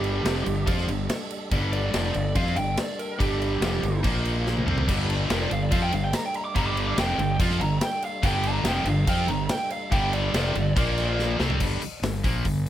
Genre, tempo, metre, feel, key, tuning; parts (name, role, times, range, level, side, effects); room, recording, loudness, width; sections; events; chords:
hard rock; 143 BPM; 4/4; straight; A4 = 440 Hz
lead guitar through a small cranked amp; melody; 0.0-11.4 s; G4 to D6; -30 LUFS; right 1 dB; overdrive, analog delay
tonewheel organ; sustained chords; 0.0-11.6 s; G3 to C5; -38 LUFS; right 1 dB
cranked stack guitar; riff; 0.0-12.6 s; F2 to F4; -28 LUFS; equal; overdrive
fuzz fingered electric bass; bass; 0.0-12.7 s; F1 to F2; -27 LUFS; equal; overdrive
big rock drum kit; drums; 0.0-12.7 s; crash cymbal, hi-hat, kick drum, snare drum, toms; -28 LUFS; equal
high-gain distorted guitar; riff; 4.9-11.6 s; F2 to F4; -30 LUFS; equal; distortion
little or no reverb; -22 LUFS; side -12 dB against mid
0.0-11.6 A section; 11.6-12.7 B section
lead electric guitar solo 0.0-11.6; drum fill 4.5-4.9, 11.2-11.6
0.0 G5; 4.0 Bb5; 4.7 G5; 10.8 Bb5; 11.4 G5